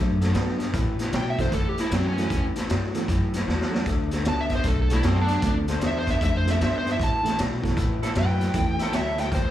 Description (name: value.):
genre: electric blues shuffle.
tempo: 154 BPM.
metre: 4/4.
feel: swing 65% on 8ths.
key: A mixolydian.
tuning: A4 = 440 Hz.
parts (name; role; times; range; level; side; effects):
electric guitar through a small old amp; riff; 0.0-9.5 s; A2 to B3; -29 LUFS; left 4 dB; slapback echo.
upright bass; bass; 0.0-9.5 s; B1 to C#3; -26 LUFS; equal; none.
raw garage drum kit; drums; 0.2-9.4 s; hi-hat, kick drum, snare drum; -26 LUFS; equal; none.
reed electric piano; accompaniment; 0.3-8.8 s; E3 to B4; -32 LUFS; right 8 dB; fast tremolo, plate reverb, slapback echo.
smooth overdriven lead guitar; melody; 1.2-9.5 s; C4 to A5; -28 LUFS; right 1 dB; plate reverb, slapback echo.
mellow horn section; stabs; 4.9-9.3 s; C#4 to C5; -34 LUFS; equal; plate reverb, slapback echo.
room: little or no reverb.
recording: live gig heard through the venue's PA, club reverb.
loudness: -22 LUFS.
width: side -12 dB against mid.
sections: 0.0-9.5 A section.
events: drum fill 3.5-3.9.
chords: 0.0 D; 0.7 A; 3.9 D; 5.4 Dm7; 7.0 A.